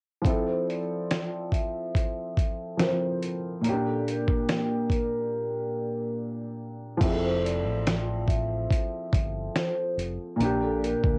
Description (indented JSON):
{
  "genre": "lo-fi hip hop",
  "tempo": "71 BPM",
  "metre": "4/4",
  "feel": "swing 55% on 16ths",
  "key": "F major",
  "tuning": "A4 = 440 Hz",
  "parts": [
    { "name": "dark upright piano", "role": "accompaniment", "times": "0.2-11.2 s", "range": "Bb2 to C5", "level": "-32 LUFS", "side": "equal", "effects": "cassette tape" },
    { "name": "dusty soul sampler-style drum kit", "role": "drums", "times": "0.3-11.2 s", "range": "crash cymbal, hi-hat, kick drum, snare drum", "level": "-29 LUFS", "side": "equal", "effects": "none" },
    { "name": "vibraphone with soft mallets", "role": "melody", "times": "0.5-11.2 s", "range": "A4 to E5", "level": "-35 LUFS", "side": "equal", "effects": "cassette tape" },
    { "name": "deep dub fingered electric bass", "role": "bass", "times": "7.0-11.2 s", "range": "F1 to D2", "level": "-34 LUFS", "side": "equal", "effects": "none" }
  ],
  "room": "moderate booth ambience, RT60 0.2 s",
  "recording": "home recording on cassette",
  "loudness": "-28 LUFS",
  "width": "mono",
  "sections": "0.3-7.0 A section; 7.0-11.2 B section",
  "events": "break 5.3-7.0",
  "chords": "0.3 Fmaj7; 3.6 Bb6; 7.0 Fmaj7; 10.4 Bb6"
}